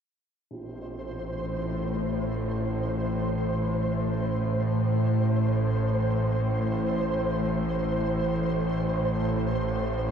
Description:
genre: dark ambient drone.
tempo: free time.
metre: none.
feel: none.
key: A minor.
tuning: A4 = 442 Hz.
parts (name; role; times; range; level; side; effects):
bowed-like drone; drone; 1.1-10.1 s; A1 to A2; -26 LUFS; equal; built-in reverb.
tam-tam; percussion; 0.5-0.7 s; none; -45 LUFS; right 2 dB; none.
flickering grainy texture; texture; 0.8-10.1 s; C5; -32 LUFS; right 2 dB; built-in reverb, shimmer reverb.
room: wet cathedral reverb, RT60 5.1 s.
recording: dark, warm production.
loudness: -25 LUFS.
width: side -7 dB against mid.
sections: 0.5-10.1 A section.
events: none.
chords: 0.5 Am.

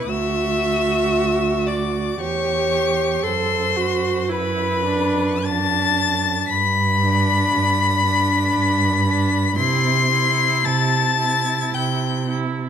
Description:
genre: classical, slow romantic movement for string quartet.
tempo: 57 BPM.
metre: 3/4.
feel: uneven beats, rubato.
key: unclear.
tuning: A4 = 439 Hz.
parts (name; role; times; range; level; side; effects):
warm violin; melody; 0.0-12.3 s; B5 to C7; -22 LUFS; left 10 dB; none.
rich violin; second line; 0.0-12.3 s; B4 to C6; -23 LUFS; left 2 dB; none.
warm viola; accompaniment; 0.0-12.7 s; D4 to A4; -24 LUFS; right 4 dB; none.
dark cello; bass; 0.0-12.7 s; D2 to C3; -23 LUFS; right 4 dB; none.
room: moderate recital hall reverb, RT60 1.8 s.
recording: close, detailed microphones.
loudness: -17 LUFS.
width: side -8 dB against mid.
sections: 0.0-12.7 A section.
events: none.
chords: 0.1 D; 2.2 C#dim/E; 3.2 D/F#; 6.5 G; 9.6 C.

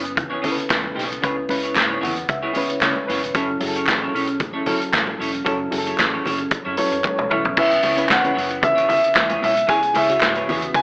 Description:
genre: disco.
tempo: 113 BPM.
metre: 4/4.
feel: straight.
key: C# minor.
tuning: A4 = 440 Hz.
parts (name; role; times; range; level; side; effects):
reed electric piano; accompaniment; 0.0-10.8 s; C#3 to F#5; -26 LUFS; left 1 dB; medium tremolo.
semi-hollow electric guitar; accompaniment; 0.0-10.8 s; B3 to C#5; -25 LUFS; right 1 dB; analog chorus.
vintage muted fingered electric bass; bass; 0.0-10.8 s; E1 to C#3; -36 LUFS; equal; none.
vintage drum kit; drums; 0.1-10.8 s; crash cymbal, handclaps, hi-hat, kick drum, snare drum, toms; -21 LUFS; equal; none.
congas; percussion; 0.2-10.6 s; none; -32 LUFS; left 1 dB; none.
group handclap; percussion; 0.7-10.3 s; none; -28 LUFS; right 1 dB; none.
warm grand piano; melody; 6.8-10.8 s; C#5 to G#5; -18 LUFS; equal; none.
room: light reverb, studio reverb.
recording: AM radio sound.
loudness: -17 LUFS.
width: side -27 dB against mid.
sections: 0.0-7.6 A section; 7.6-10.8 B section.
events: reed electric piano fill 1.8-3.3, 6.5-7.6; drum fill 7.1-7.6.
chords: 0.0 F#m7; 7.6 C#m7.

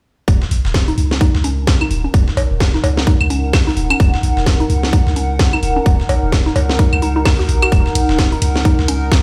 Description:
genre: minimal techno.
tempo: 129 BPM.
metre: 4/4.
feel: swing 59% on 16ths.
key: Eb minor.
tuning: A4 = 440 Hz.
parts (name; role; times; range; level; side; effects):
punchy sub bass; bass; 0.3-9.2 s; Eb1 to Eb2; -20 LUFS; equal; sidechain pumping.
breakbeat sampler-style drum kit; drums; 0.3-9.2 s; hi-hat, snare drum; -31 LUFS; equal; sidechain pumping on hats, high-pass filter on hats, high-pass filter on snare.
electronic kick drum; drums; 0.3-9.2 s; none; -15 LUFS; equal; none.
warbly tape-like pad; texture; 0.9-9.2 s; Eb4 to Ab5; -25 LUFS; equal; chorus, built-in reverb, phaser, sidechain pumping.
garage drum kit; drums; 0.7-9.2 s; hi-hat, snare drum; -22 LUFS; equal; none.
mallet-like synth pluck; riff; 0.9-8.9 s; Db4 to Gb4; -25 LUFS; equal; chorus, sidechain pumping, digital delay.
claves and cowbell; percussion; 1.8-7.7 s; none; -23 LUFS; equal; digital delay.
room: light reverb.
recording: played on a big sound system in a bare room, stone room reverb.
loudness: -15 LUFS.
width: mono.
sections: 0.3-9.2 A section.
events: filter sweep on synth arpeggio sound 0.3-9.2.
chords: 0.3 Ebm7.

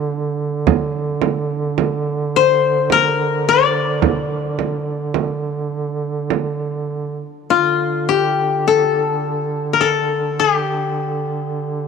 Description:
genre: caucasian folk, Caucasian lament.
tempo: 53 BPM.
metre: 3/4.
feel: rubato.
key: D minor.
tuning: A4 = 440 Hz.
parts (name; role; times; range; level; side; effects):
koto; melody; 0.0-11.9 s; F4 to D5; -16 LUFS; left 8 dB; none.
mellow duduk; drone; 0.0-11.9 s; D3; -22 LUFS; right 4 dB; none.
frame drum; percussion; 0.7-6.6 s; none; -19 LUFS; right 11 dB; none.
room: moderate plate reverb, RT60 3.3 s.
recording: 1960s-style stereo with parts hard left and right.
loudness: -16 LUFS.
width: side -6 dB against mid.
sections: 0.0-7.5 A section; 7.5-11.9 B section.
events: none.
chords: none.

